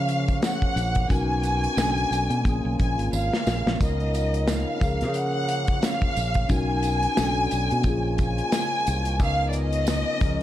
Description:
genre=lush 1970s-style soul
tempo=89 BPM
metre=4/4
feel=swing 58% on 16ths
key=unclear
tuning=A4 = 439 Hz
part: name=warm studio violin section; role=melody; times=0.0-10.4 s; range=D5 to G#5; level=-27 LUFS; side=equal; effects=tape echo
part: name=mellow tine electric piano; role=accompaniment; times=0.0-10.4 s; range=E#3 to A#4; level=-30 LUFS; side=left 2 dB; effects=phaser
part: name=mellow French horn section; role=sustained chords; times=0.0-10.4 s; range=C#3 to A#4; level=-35 LUFS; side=right 1 dB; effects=none
part: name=fingered electric bass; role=bass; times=0.0-10.4 s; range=G#1 to C#3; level=-26 LUFS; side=equal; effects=none
part: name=modern studio drum kit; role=drums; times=0.1-10.4 s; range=hi-hat, kick drum, snare drum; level=-26 LUFS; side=equal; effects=none
part: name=tambourine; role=percussion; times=0.4-10.4 s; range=none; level=-41 LUFS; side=right 15 dB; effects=none
room=light reverb, small room ambience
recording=dark, warm production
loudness=-21 LUFS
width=side -13 dB against mid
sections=0.0-10.4 A section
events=drum fill 3.1-3.8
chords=0.0 F#maj7/C#; 1.1 Bmaj7; 1.8 Bm7; 2.5 A#m7; 3.8 C#13; 4.8 F#maj7/C#; 6.5 Bmaj7; 7.2 Bm7; 7.9 A#m7; 9.2 C#13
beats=0.43 | 1.10 1.78 2.45 3.13 | 3.80 4.48 5.15 5.83 | 6.50 7.18 7.85 8.53 | 9.21 9.88

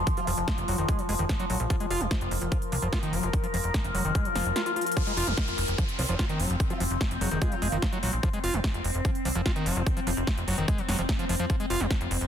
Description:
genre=psychedelic trance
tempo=147 BPM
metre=4/4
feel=straight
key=F phrygian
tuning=A4 = 440 Hz
part: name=overtone-sweeping drone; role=sustained chords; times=0.0-12.3 s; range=F3 to Bb4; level=-32 LUFS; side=left 3 dB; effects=chorus, built-in reverb, phaser, sidechain pumping
part: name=overdriven acid bass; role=riff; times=0.0-11.9 s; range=Eb3 to F4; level=-32 LUFS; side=equal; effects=auto-pan, sidechain pumping, ping-pong delay
part: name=plucky analog bass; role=bass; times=0.0-12.3 s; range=F1 to F2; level=-30 LUFS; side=equal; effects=none
part: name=big-room dance drum kit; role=drums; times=0.1-12.3 s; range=hi-hat, snare drum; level=-34 LUFS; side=right 1 dB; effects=overdrive
part: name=electronic kick drum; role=drums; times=0.1-12.0 s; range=none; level=-29 LUFS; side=equal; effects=none
part: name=vowel-sweep wobble bass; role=second line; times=0.2-0.3, 6.0-7.8 s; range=Ab3 to F4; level=-39 LUFS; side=right 5 dB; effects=lush chorus, cassette tape, sidechain pumping, high-pass filter, ping-pong delay
part: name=swell and downlifter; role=sound effects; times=4.3-8.2 s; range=none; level=-37 LUFS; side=equal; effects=none
room=light reverb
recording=dense, heavily limited modern master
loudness=-25 LUFS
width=side -9 dB against mid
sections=0.0-5.0 A section; 5.0-12.3 B section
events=swell 4.3-5.0; drum fill 4.8; drop 5.0-12.3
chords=0.0 F5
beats=| 0.07 0.48 0.89 1.29 | 1.70 2.11 2.52 2.93 | 3.33 3.74 4.15 4.56 | 4.97 5.38 5.78 6.19 | 6.60 7.01 7.42 7.82 | 8.23 8.64 9.05 9.46 | 9.87 10.27 10.68 11.09 | 11.50 11.91

